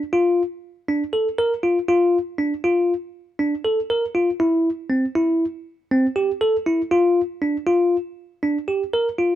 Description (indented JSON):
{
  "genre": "contemporary instrumental, contemporary",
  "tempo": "238 BPM (eighths)",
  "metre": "5/8",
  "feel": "straight",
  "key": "unclear",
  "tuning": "A4 = 440 Hz",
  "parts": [
    { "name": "bell-like tine electric piano", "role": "solo", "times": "0.0-9.3 s", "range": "C4 to Bb4", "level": "-18 LUFS", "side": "equal", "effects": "none" }
  ],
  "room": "light reverb",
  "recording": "minimal, uncompressed stereo recording",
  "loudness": "-19 LUFS",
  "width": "side -12 dB against mid",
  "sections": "0.0-4.4 A section; 4.4-9.4 B section",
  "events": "none",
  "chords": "none",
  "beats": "0.13 0.38 | 0.63 0.88 1.13 1.38 1.64 | 1.89 2.14 2.39 2.64 2.89 | 3.15 3.40 3.65 3.90 4.15 | 4.40 4.65 4.91 5.16 5.41 | 5.66 5.91 6.16 6.42 6.67 | 6.92 7.17 7.42 7.67 7.92 | 8.18 8.43 8.68 8.93 9.18"
}